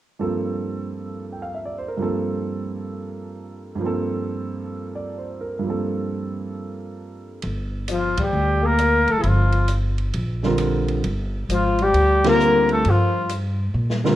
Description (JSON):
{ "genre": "modal jazz", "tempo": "133 BPM", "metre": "4/4", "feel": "swing 65% on 8ths", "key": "G minor", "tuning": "A4 = 440 Hz", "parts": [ { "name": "warm concert grand piano", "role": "accompaniment", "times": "0.2-7.5, 10.4-14.2 s", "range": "G2 to G5", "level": "-24 LUFS", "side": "right 2 dB", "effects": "none" }, { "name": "upright bass", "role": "bass", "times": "7.4-14.2 s", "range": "F#1 to Bb2", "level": "-22 LUFS", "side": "equal", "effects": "none" }, { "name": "open jazz drum kit", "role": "drums", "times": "7.4-14.2 s", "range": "hi-hat, kick drum, ride cymbal, rim click, snare drum", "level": "-32 LUFS", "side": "left 1 dB", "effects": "none" }, { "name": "mellow trumpet", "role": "melody", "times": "7.9-13.3 s", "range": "E4 to Bb4", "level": "-20 LUFS", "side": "equal", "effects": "none" }, { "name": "breathy alto saxophone", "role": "second line", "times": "7.9-13.3 s", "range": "E3 to Bb3", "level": "-23 LUFS", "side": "left 5 dB", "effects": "none" } ], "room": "moderate large studio reverb, RT60 1.3 s", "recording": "worn, warbling old tape, cassette tape, warbly pitch drift", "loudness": "-19 LUFS", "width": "side -14 dB against mid", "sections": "0.2-7.4 A section; 7.4-14.2 B section", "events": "band accent 8.1, 12.2; drum fill 13.8-14.2", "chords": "0.2 Gm11; 7.4 Gm7" }